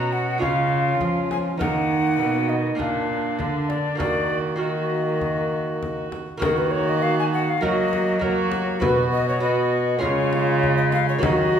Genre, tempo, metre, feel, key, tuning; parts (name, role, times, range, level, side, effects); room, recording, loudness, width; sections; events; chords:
classical, renaissance-style consort dance; 100 BPM; 4/4; straight; Eb minor; A4 = 440 Hz
alto recorder; melody; 0.0-11.6 s; Bb4 to Bb5; -25 LUFS; left 4 dB
warm viola; second line; 0.0-11.6 s; D4 to Gb4; -27 LUFS; right 4 dB
lute; accompaniment; 0.0-11.6 s; Bb2 to Db5; -29 LUFS; right 2 dB
warm trombone; accompaniment; 0.0-11.6 s; Gb3 to Db4; -28 LUFS; left 3 dB
warm cello; bass; 0.0-11.6 s; Bb2 to Gb3; -25 LUFS; right 2 dB
frame drum; percussion; 0.4-11.5 s; -31 LUFS; left 2 dB
wet recital hall reverb, RT60 1.4 s; recorded in a church or concert hall; -20 LUFS; side -8 dB against mid
0.0-6.4 A section; 6.4-11.6 B section
0.4 Db; 1.6 Ebm; 2.8 Bb; 4.0 Ebm; 7.6 Gb; 8.8 B; 10.0 Db